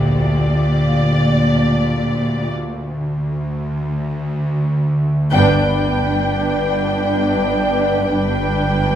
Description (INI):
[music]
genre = cinematic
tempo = free time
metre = none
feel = none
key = unclear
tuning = A4 = 440 Hz
[part]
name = muted studio violin section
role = melody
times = 0.0-9.0 s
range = D5 to G5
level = -22 LUFS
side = left 1 dB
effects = none
[part]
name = muted symphonic cello section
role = bass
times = 0.0-9.0 s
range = G2 to Bb2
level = -22 LUFS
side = right 1 dB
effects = none
[part]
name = muted symphonic double bass section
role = bass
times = 0.0-0.5, 5.3-9.0 s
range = G1 to Bb1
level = -25 LUFS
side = right 2 dB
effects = none
[part]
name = bowed-like drone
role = drone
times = 0.0-9.0 s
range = G1 to D2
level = -19 LUFS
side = equal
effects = built-in reverb
[part]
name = vibraphone with medium mallets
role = texture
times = 0.0-9.0 s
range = G4 to D6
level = -31 LUFS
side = left 2 dB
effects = none
[part]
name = muted symphonic violin section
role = second line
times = 5.3-9.0 s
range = B4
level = -25 LUFS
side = equal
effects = none
[part]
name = muted symphonic viola section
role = accompaniment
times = 5.3-9.0 s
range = D4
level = -23 LUFS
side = right 2 dB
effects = none
[part]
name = mellow French horn section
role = sustained chords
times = 5.3-9.0 s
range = B3 to D4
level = -21 LUFS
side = left 1 dB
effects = none
[sound]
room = wet recital hall reverb, RT60 1.2 s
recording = recorded in a church or concert hall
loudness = -15 LUFS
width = side -10 dB against mid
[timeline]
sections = 0.0-5.3 A section; 5.3-9.0 B section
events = break 2.6-5.3; band accent 5.3-6.0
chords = 0.0 Bb; 2.6 N.C.; 5.3 G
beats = free time